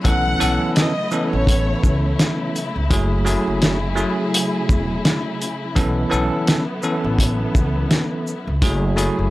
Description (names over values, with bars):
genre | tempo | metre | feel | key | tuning
hip hop, boom-bap hip-hop | 84 BPM | 4/4 | swing 58% on 16ths | unclear | A4 = 441 Hz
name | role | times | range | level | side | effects
bell-like tine electric piano | accompaniment | 0.0-9.3 s | E3 to A4 | -22 LUFS | equal | medium stereo tremolo, cassette tape
warm studio string section | sustained chords | 0.0-9.3 s | C#3 to G#4 | -27 LUFS | left 1 dB | none
cloth-damped thuddy drum kit | drums | 0.0-9.2 s | hi-hat, kick drum, shaker, snare drum | -18 LUFS | equal | none
warm studio violin section | melody | 0.1-2.1 s | C#5 to F#5 | -24 LUFS | left 1 dB | analog delay
upright bass | bass | 0.1-9.3 s | E1 to C#2 | -22 LUFS | equal | none
room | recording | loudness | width
little or no reverb | dry, gritty hardware recording, transformer saturation | -17 LUFS | side -17 dB against mid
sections
0.0-9.3 A section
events
none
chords
0.0 B9sus4; 2.9 F#m9; 5.8 B9sus4; 8.6 F#m9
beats
| 0.05 0.76 1.48 2.19 | 2.90 3.62 4.33 5.05 | 5.76 6.47 7.19 7.90 | 8.62